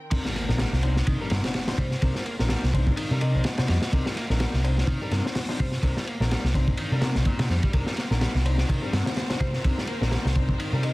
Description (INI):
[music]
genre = breakbeat, breaks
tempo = 126 BPM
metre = 4/4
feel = swing 56% on 16ths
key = C minor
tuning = A4 = 439 Hz
[part]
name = rich symphonic string section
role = sustained chords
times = 0.0-0.1, 7.7-10.9 s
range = Eb3 to G5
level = -39 LUFS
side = equal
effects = vintage 12-bit sampler grit, sidechain pumping
[part]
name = dark baby grand piano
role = stabs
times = 0.0-10.9 s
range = C4 to C5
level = -34 LUFS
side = left 4 dB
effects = ping-pong delay
[part]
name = overdriven electric guitar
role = riff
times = 0.1-10.9 s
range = Bb2 to Bb3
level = -35 LUFS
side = equal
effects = vintage 12-bit sampler grit, ping-pong delay
[part]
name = picked electric bass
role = bass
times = 0.1-10.9 s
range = Bb1 to C3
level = -24 LUFS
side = equal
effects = none
[part]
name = crunchy breakbeat drum kit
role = drums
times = 0.1-10.9 s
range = crash cymbal, hi-hat, kick drum, ride cymbal, snare drum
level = -26 LUFS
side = equal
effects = none
[part]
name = impact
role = sound effects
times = 0.3-2.0 s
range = none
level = -37 LUFS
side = equal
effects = none
[part]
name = marimba with medium hard mallets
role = melody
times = 1.8-5.8, 9.4-10.9 s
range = C5 to Eb5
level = -40 LUFS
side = left 1 dB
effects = telephone sound, ping-pong delay
[sound]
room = little or no reverb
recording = dense, heavily limited modern master, vinyl crackle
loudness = -22 LUFS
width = side -20 dB against mid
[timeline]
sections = 0.1-10.9 A section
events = drop 0.1-10.9; impact 0.1-2.0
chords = 0.1 Cm9